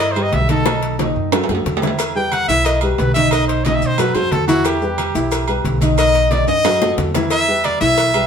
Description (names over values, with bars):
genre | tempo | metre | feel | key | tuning
latin, salsa | 180 BPM | 4/4 | straight | E harmonic minor | A4 = 440 Hz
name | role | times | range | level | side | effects
bright trumpet | melody | 0.0-8.3 s | F#4 to G5 | -18 LUFS | left 1 dB | none
dark baby grand piano | accompaniment | 0.0-8.3 s | D#3 to E5 | -20 LUFS | left 1 dB | none
upright bass | bass | 0.0-8.3 s | B1 to B2 | -21 LUFS | right 1 dB | none
agogo bells and timbales | percussion | 0.0-8.3 s | none | -24 LUFS | right 5 dB | none
cowbell and bongos | percussion | 0.0-8.1 s | none | -25 LUFS | left 5 dB | none
congas | percussion | 0.2-8.3 s | none | -25 LUFS | equal | none
maracas | percussion | 2.0-8.3 s | none | -34 LUFS | left 3 dB | none
room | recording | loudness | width
wet studio reverb, RT60 0.8 s | band playing live in one room | -14 LUFS | side -7 dB against mid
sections
0.0-8.3 A section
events
trumpet solo 0.0-8.3; drum fill 0.7-2.0, 6.5-7.3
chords
0.0 Em; 0.7 B7; 2.0 Em; 3.3 B7; 4.7 Em; 6.0 B7; 7.3 Em